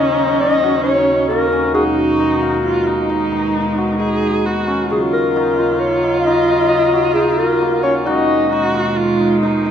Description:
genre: contemporary instrumental, contemporary.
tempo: 133 BPM.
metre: 7/4.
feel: straight.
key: Eb minor.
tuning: A4 = 440 Hz.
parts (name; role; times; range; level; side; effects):
mellow clarinet; melody; 0.0-8.9 s; F#4 to F5; -17 LUFS; left 2 dB; none.
warm viola; second line; 0.0-9.7 s; Db4 to G#4; -18 LUFS; right 3 dB; none.
rich chamber string section; sustained chords; 0.0-9.7 s; D#2 to G#3; -23 LUFS; right 1 dB; none.
hammered dulcimer; arpeggios; 0.0-9.7 s; Gb3 to F5; -20 LUFS; left 2 dB; none.
room: wet recital hall reverb, RT60 1.8 s.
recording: none.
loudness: -13 LUFS.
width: side -8 dB against mid.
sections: 0.0-9.7 A section.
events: none.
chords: 0.0 Ebm7; 1.8 B6/D#; 4.9 Ebm7; 8.1 B6/D#.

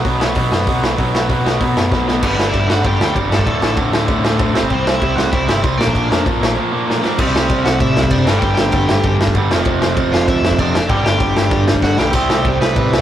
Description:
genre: punk rock.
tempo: 193 BPM.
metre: 4/4.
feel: straight.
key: unclear.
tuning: A4 = 440 Hz.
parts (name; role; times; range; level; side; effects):
biting overdriven guitar; riff; 0.0-13.0 s; D2 to C4; -19 LUFS; right 4 dB; none.
cranked stack guitar; riff; 0.0-13.0 s; D2 to C4; -21 LUFS; left 5 dB; overdrive.
overdriven picked electric bass; bass; 0.0-13.0 s; D1 to A2; -21 LUFS; left 1 dB; none.
raw garage drum kit; drums; 0.0-13.0 s; crash cymbal, hi-hat, kick drum, snare drum, splash cymbal; -17 LUFS; equal; none.
smooth overdriven lead guitar; melody; 2.2-13.0 s; B3 to B5; -22 LUFS; left 1 dB; none.
room: moderate small room ambience, RT60 0.5 s.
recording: rough rehearsal-room recording.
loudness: -13 LUFS.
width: side -11 dB against mid.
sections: 0.0-2.2 A section; 2.2-7.2 B section; 7.2-13.0 C section.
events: drum fill 1.9-2.2, 6.9-7.2, 11.8-12.1.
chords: 0.0 B5; 2.2 G; 3.5 D5; 4.6 C; 5.8 Bb; 7.2 C; 8.3 G5; 9.5 F5; 10.9 G5; 12.1 C5.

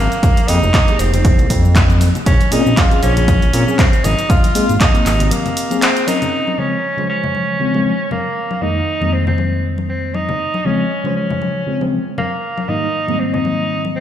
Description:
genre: deep house.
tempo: 118 BPM.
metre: 4/4.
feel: swing 56% on 16ths.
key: Bb dorian.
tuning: A4 = 440 Hz.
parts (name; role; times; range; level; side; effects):
warm tenor saxophone; melody; 0.0-14.0 s; Bb3 to F4; -20 LUFS; right 1 dB; ping-pong delay.
smooth synth bass; bass; 0.0-5.3 s; F1 to Bb2; -15 LUFS; equal; sidechain pumping.
punchy analog drum machine; drums; 0.1-6.3 s; handclaps, hi-hat, shaker; -21 LUFS; equal; low-pass filter on hats, low-pass filter on perc, low-pass filter on snare.
electronic kick drum; drums; 0.2-4.9 s; none; -13 LUFS; equal; none.
congas; percussion; 0.4-13.9 s; none; -26 LUFS; left 5 dB; sidechain pumping on perc.
mellow FM electric piano; stabs; 0.5-14.0 s; F2 to C5; -20 LUFS; left 1 dB; chorus, phaser, sidechain pumping, low-pass filter, ping-pong delay.
room: light reverb.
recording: played on a big sound system in a bare room, stone room reverb.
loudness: -13 LUFS.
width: side -10 dB against mid.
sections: 0.0-6.3 A section; 6.3-14.0 B section.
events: break 5.3-6.3.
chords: 0.2 Fm11; 2.3 Bbm9; 4.3 Abmaj9; 6.3 Bbm9 (rootless); 8.4 Fm11; 10.4 Dbmaj7; 12.4 Abmaj9.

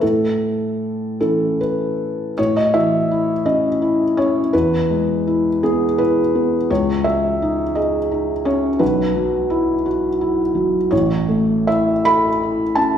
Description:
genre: neoclassical minimalist piano.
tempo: 49-58 BPM (dotted quarters).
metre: 6/8.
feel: rubato.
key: unclear.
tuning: A4 = 440 Hz.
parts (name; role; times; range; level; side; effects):
felt-muted upright piano; solo; 0.0-13.0 s; A1 to B5; -16 LUFS; equal; none.
room: wet recital hall reverb, RT60 1.4 s.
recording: recorded in a church or concert hall.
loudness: -16 LUFS.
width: side -9 dB against mid.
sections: 0.0-2.4 A section; 2.4-13.0 B section.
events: none.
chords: 0.0 A; 4.5 E; 6.7 C#sus2; 8.8 Bsus4; 10.9 A.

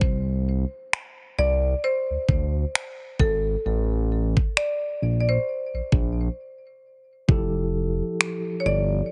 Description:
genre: contemporary R&B.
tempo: 66 BPM.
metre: 4/4.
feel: swing 58% on 16ths.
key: unclear.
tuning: A4 = 441 Hz.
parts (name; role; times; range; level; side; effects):
marimba with hard mallets; melody; 0.0-9.1 s; A4 to D5; -30 LUFS; equal; delay.
smooth gliding synth bass; bass; 0.0-9.0 s; F1 to D2; -26 LUFS; equal; none.
smooth R&B drum kit; drums; 0.0-8.4 s; finger snaps, kick drum; -23 LUFS; equal; none.
mellow tine electric piano; accompaniment; 7.3-9.1 s; F3 to A4; -30 LUFS; equal; none.
room: digital ambience.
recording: heavily compressed radio sound, nothing above 10.6 kHz.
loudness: -24 LUFS.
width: mono.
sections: 0.0-9.1 A section.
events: break 6.4-7.3.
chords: 0.0 Csus2; 3.6 Am; 6.4 N.C.; 7.3 Fmaj9.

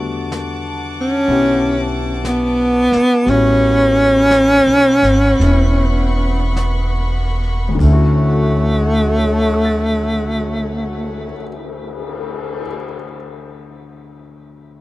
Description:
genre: jazz ballad.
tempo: 47-64 BPM.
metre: 4/4.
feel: swing 68% on 8ths.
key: D major.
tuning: A4 = 438 Hz.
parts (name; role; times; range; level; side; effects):
clear grand piano; accompaniment; 0.0-14.8 s; D2 to A6; -24 LUFS; left 4 dB; none.
warm studio string section; sustained chords; 0.0-11.3 s; F#4 to D6; -27 LUFS; left 1 dB; none.
upright bass; bass; 0.0-11.3 s; E1 to E2; -18 LUFS; equal; none.
vintage brush drum kit; drums; 0.3-12.7 s; brushed snare drum, crash cymbal, cymbal swell, hi-hat, kick drum, snare drum; -29 LUFS; left 3 dB; none.
breathy tenor saxophone; melody; 1.0-11.3 s; A3 to C#4; -15 LUFS; equal; tape echo.
room: small room ambience.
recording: dry, close 1970s-style studio recording.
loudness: -13 LUFS.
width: side -18 dB against mid.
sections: 0.0-7.8 A section; 7.8-12.9 B section.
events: slowing down 0.0-7.8.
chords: 0.0 Em11; 3.3 A13; 7.8 Dmaj7.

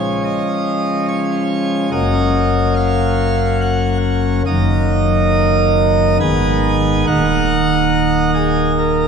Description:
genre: classical, chorale-style piece for pipe organ.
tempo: 71 BPM.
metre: 3/4.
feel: rubato.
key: Eb minor from 4.5 s.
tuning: A4 = 435 Hz.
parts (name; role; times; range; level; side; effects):
pipe organ, plenum; solo; 0.0-9.1 s; Eb1 to Ab5; -13 LUFS; equal; none.
room: wet church reverb, RT60 2.7 s.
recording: dark, warm production, nothing above 10.3 kHz.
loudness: -13 LUFS.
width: side -6 dB against mid.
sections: 0.0-9.1 A section.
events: none.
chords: 0.0 Db; 1.9 Gb; 4.5 Ebm/Gb; 6.2 Abm; 7.1 Ebm.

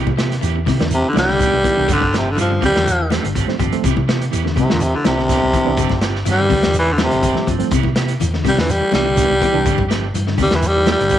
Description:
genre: afrobeat.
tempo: 124 BPM.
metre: 4/4.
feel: swing 53% on 16ths.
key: G mixolydian.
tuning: A4 = 440 Hz.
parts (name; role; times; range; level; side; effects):
clean electric guitar; arpeggios; 0.0-11.2 s; C3 to F3; -26 LUFS; left 11 dB; none.
electric guitar at the edge of break-up; stabs; 0.0-11.2 s; E3 to G4; -26 LUFS; right 11 dB; harmonic tremolo.
hollow-body short-scale fingered electric bass; bass; 0.0-11.2 s; G1 to C3; -21 LUFS; equal; none.
crunchy breakbeat drum kit; drums; 0.1-11.2 s; hi-hat, kick drum, snare drum; -22 LUFS; equal; none.
congas; percussion; 0.1-11.0 s; none; -26 LUFS; left 10 dB; none.
shekere; percussion; 0.2-11.2 s; none; -28 LUFS; right 4 dB; none.
reed electric piano; accompaniment; 0.8-11.0 s; E3 to D4; -25 LUFS; right 11 dB; fast tremolo.
growling baritone saxophone; melody; 0.9-11.2 s; Bb2 to G3; -17 LUFS; equal; none.
room: light reverb, small room ambience.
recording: 1960s-style stereo with parts hard left and right, lossy compression artefacts.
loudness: -14 LUFS.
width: side -11 dB against mid.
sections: 0.0-11.2 A section.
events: baritone saxophone solo 0.0-11.2.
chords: 0.0 Cmaj7; 1.9 G7sus4; 3.8 Cmaj7; 5.8 G7sus4; 7.7 Cmaj7; 9.7 G7sus4.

